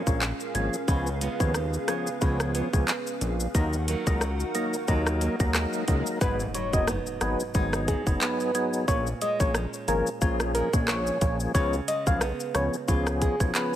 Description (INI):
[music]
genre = dancehall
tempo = 90 BPM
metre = 4/4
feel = swing 56% on 16ths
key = G# dorian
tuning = A4 = 440 Hz
[part]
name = percussive tonewheel organ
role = accompaniment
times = 0.0-13.8 s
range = E#3 to A#4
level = -30 LUFS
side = left 1 dB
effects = overdrive, chorus vibrato, slow rotary speaker
[part]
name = hollow soft pad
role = sustained chords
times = 0.0-6.2 s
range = C#4 to F#5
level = -36 LUFS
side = equal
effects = ensemble chorus, sidechain pumping
[part]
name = nylon-string guitar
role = arpeggios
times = 0.0-13.8 s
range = G#2 to E#4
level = -35 LUFS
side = right 6 dB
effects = digital delay
[part]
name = fat analog bass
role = bass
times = 0.1-13.5 s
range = F#1 to D#2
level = -29 LUFS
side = equal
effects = none
[part]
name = island pop drum kit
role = drums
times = 0.1-13.7 s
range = handclaps, hi-hat, kick drum, rim click, shaker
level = -28 LUFS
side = equal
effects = none
[part]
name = swell and impact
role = sound effects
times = 5.4-8.9 s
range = none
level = -39 LUFS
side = left 1 dB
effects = none
[part]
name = soft struck synth lead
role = melody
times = 6.2-13.8 s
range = G#4 to E#5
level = -30 LUFS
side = left 1 dB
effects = chorus, digital delay
[sound]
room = digital ambience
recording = none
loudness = -24 LUFS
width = side -11 dB against mid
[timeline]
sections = 0.0-6.2 A section; 6.2-13.8 B section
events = impact 6.2-8.9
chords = 0.0 A#m7; 0.9 C#7; 3.5 D#m; 6.2 G#m7; 8.9 A#m7; 11.5 C#7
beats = 0.21 | 0.88 1.55 2.21 2.88 | 3.55 4.21 4.88 5.55 | 6.21 6.88 7.55 8.21 | 8.88 9.55 10.21 10.88 | 11.55 12.21 12.88 13.55